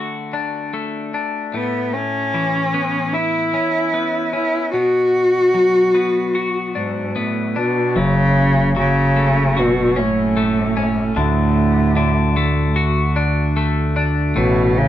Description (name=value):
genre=post-rock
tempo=75 BPM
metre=4/4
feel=straight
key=F# minor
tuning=A4 = 440 Hz
part: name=twelve-string electric guitar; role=arpeggios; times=0.0-14.9 s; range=F#2 to F#4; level=-22 LUFS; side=left 4 dB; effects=spring reverb
part: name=rich cello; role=melody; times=1.5-14.9 s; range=G#2 to F#4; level=-17 LUFS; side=right 1 dB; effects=none
part: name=growling picked electric bass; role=bass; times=8.0-14.9 s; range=F#1 to D2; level=-20 LUFS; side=right 1 dB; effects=overdrive
room=moderate studio reverb, RT60 0.7 s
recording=band playing live in one room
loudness=-15 LUFS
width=side -12 dB against mid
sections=0.0-8.0 A section; 8.0-14.9 A section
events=none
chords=0.0 D; 1.5 Aadd9; 4.7 Bm; 8.0 F#m; 11.2 D; 14.4 Aadd9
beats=0.73 | 1.53 2.34 3.14 3.94 | 4.75 5.55 6.35 7.15 | 7.96 8.76 9.56 10.36 | 11.16 11.96 12.76 13.56 | 14.36